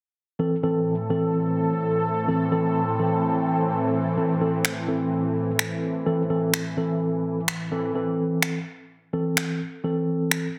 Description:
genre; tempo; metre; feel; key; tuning
dance-pop; 127 BPM; 4/4; straight; A minor; A4 = 443 Hz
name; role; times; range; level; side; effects
mellow tine electric piano; accompaniment; 0.4-10.5 s; E3 to A4; -26 LUFS; equal; none
lush unison pad; sustained chords; 0.4-8.0 s; A2 to A4; -28 LUFS; equal; chorus, phaser
electronic finger snaps; drums; 4.6-10.4 s; none; -28 LUFS; equal; soft clipping on snare
room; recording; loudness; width
moderate digital room reverb, RT60 1.1 s, digital ambience; dense, heavily limited modern master; -24 LUFS; mono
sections
0.4-8.0 A section; 8.0-10.6 B section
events
none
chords
0.4 Am

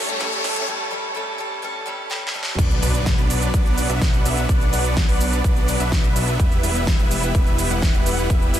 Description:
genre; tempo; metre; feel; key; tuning
EDM, festival progressive house; 126 BPM; 4/4; straight; B minor; A4 = 440 Hz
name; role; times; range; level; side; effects
picked steel-string acoustic guitar; accompaniment; 0.0-2.6 s; G2 to A4; -29 LUFS; equal; sidechain pumping, digital delay
lush unison pad; sustained chords; 0.0-8.6 s; A2 to F#5; -30 LUFS; left 1 dB; chorus, sidechain pumping
supersaw chords; riff; 0.0-8.6 s; F#3 to F#5; -25 LUFS; right 1 dB; sidechain pumping, digital delay
riser and impact; sound effects; 0.0-4.5 s; none; -28 LUFS; left 1 dB; none
big-room dance drum kit; drums; 0.1-8.6 s; crash cymbal, hi-hat, shaker, snare drum; -27 LUFS; equal; high-pass filter on snare, small room ambience, high-pass filter on hats, high-pass filter on cymbals, high-pass filter on perc
fat analog bass; bass; 2.6-8.6 s; E1 to B1; -24 LUFS; equal; tube saturation, sidechain pumping
electronic kick drum; drums; 2.6-8.4 s; none; -19 LUFS; equal; small room ambience
room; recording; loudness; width
digital ambience; dense, heavily limited modern master, high-pass filter; -18 LUFS; side -11 dB against mid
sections
0.0-2.6 A section; 2.6-8.6 B section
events
build-up 0.0-2.6; drum fill 0.0-0.7, 2.1-2.6; riser 0.0-0.7; break 0.7-2.6; drop 2.6-8.6; impact 2.6-4.5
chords
0.0 A; 2.6 Bm; 6.4 Em

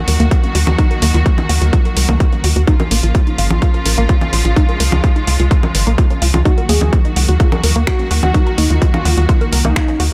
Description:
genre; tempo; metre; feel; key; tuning
melodic techno; 127 BPM; 4/4; straight; Eb minor; A4 = 440 Hz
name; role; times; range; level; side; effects
rich studio string section; sustained chords; 0.0-10.1 s; Db3 to Gb4; -25 LUFS; equal; sidechain pumping
tight sequenced synth; arpeggios; 0.1-10.0 s; Bb3 to Gb5; -25 LUFS; equal; chorus, sidechain pumping, digital delay
tight sequencer bass; bass; 0.1-10.1 s; Ab1 to Eb2; -16 LUFS; equal; sidechain pumping
deep house drum kit; drums; 0.1-10.1 s; congas, finger snaps, hi-hat; -22 LUFS; equal; overdrive, sidechain pumping on hats, small room ambience, sidechain pumping on cymbals, sidechain pumping on perc
electronic kick drum; drums; 0.3-9.9 s; none; -16 LUFS; equal; small room ambience
unison lead; melody; 6.5-10.1 s; Eb4 to Ab4; -24 LUFS; equal; sidechain pumping, digital delay
room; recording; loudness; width
digital ambience; none; -14 LUFS; mono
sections
0.0-10.1 A section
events
filter sweep on synth arpeggio sound 0.0-10.1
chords
0.0 Ebm; 2.7 Bbm; 4.6 Db; 6.5 Ebm

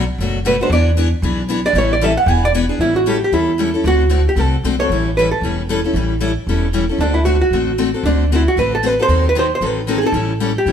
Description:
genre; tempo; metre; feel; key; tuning
acoustic string swing (jazz manouche); 229 BPM; 4/4; swing 57% on 8ths; unclear; A4 = 440 Hz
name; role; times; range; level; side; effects
archtop guitar, miked and amplified; melody; 0.0-10.7 s; D4 to G#5; -17 LUFS; right 2 dB; none
picked steel-string acoustic guitar; accompaniment; 0.0-10.7 s; B2 to A4; -19 LUFS; left 4 dB; none
upright bass; bass; 0.0-10.7 s; E1 to E2; -18 LUFS; equal; none
room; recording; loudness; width
moderate stone room reverb, RT60 1.1 s; band playing live in one room; -14 LUFS; side -8 dB against mid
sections
0.0-2.8 A section; 2.8-10.7 B section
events
hollow-body jazz guitar solo 0.0-2.8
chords
0.0 Bm7; 0.7 E7; 1.7 A7; 2.3 E7; 2.8 A7; 3.8 D7; 4.9 A7; 7.0 D7; 9.1 D#dim7; 10.1 A7

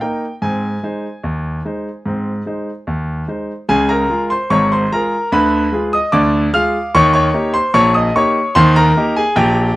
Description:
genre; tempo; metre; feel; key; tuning
ragtime piano; 74 BPM; 2/4; straight; Ab major; A4 = 440 Hz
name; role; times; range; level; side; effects
bright concert grand piano; solo; 0.0-9.8 s; Ab1 to F6; -13 LUFS; equal; none
room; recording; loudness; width
light reverb; close, detailed microphones; -13 LUFS; side -17 dB against mid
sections
0.0-3.7 A section; 3.7-9.8 B section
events
none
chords
0.4 Ab; 3.7 Db; 5.3 Ddim7; 6.9 Eb7

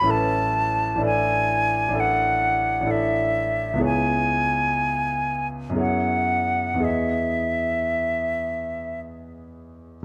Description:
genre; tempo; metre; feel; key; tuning
classical, impressionist duo for flute and grand piano; 55-66 BPM; 3/4; rubato; E major; A4 = 441 Hz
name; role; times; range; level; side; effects
silver concert flute; melody; 0.0-9.0 s; E5 to B5; -25 LUFS; equal; none
clear concert grand piano; accompaniment; 0.0-10.0 s; A1 to D#5; -28 LUFS; equal; none
room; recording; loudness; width
light reverb; close, detailed microphones; -23 LUFS; mono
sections
0.0-10.0 A section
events
none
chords
0.0 Aadd9; 3.8 C#m7; 5.8 F#9sus4; 6.8 Emaj7

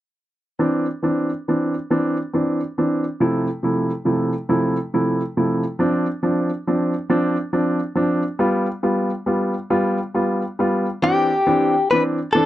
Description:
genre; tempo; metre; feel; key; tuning
pop; 46 BPM (dotted quarters); 6/8; straight; C major; A4 = 440 Hz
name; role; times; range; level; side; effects
clear baby grand piano; accompaniment; 0.6-12.5 s; C3 to F4; -19 LUFS; equal; none
direct-recorded clean electric guitar; melody; 11.0-12.5 s; G4 to B4; -16 LUFS; left 2 dB; none
room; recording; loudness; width
light reverb; dry, close 1970s-style studio recording, lossy compression artefacts; -18 LUFS; side -14 dB against mid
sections
0.6-11.0 A section; 11.0-12.5 B section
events
none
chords
0.6 Cadd9; 3.2 Fmaj7/C; 5.8 Dm7; 8.4 G7; 11.0 Cadd9

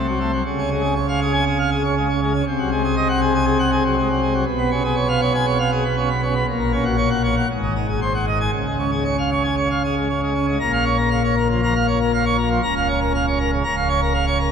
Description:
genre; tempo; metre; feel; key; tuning
classical, organ toccata; 119 BPM; 4/4; straight; Db major, Bb minor from 10.6 s; A4 = 444 Hz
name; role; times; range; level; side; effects
pipe organ, plenum; solo; 0.0-14.5 s; Db1 to Bb5; -17 LUFS; equal; none
room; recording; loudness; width
wet cathedral reverb, RT60 5.7 s; none; -17 LUFS; side -7 dB against mid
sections
0.0-10.6 A section; 10.6-14.5 B section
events
none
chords
0.5 Db; 2.5 Ab7/C; 4.5 Db7/Cb; 6.5 Gb/Bb; 7.5 Ab7; 8.5 Db; 10.6 Bbm; 12.6 Bbm/Db

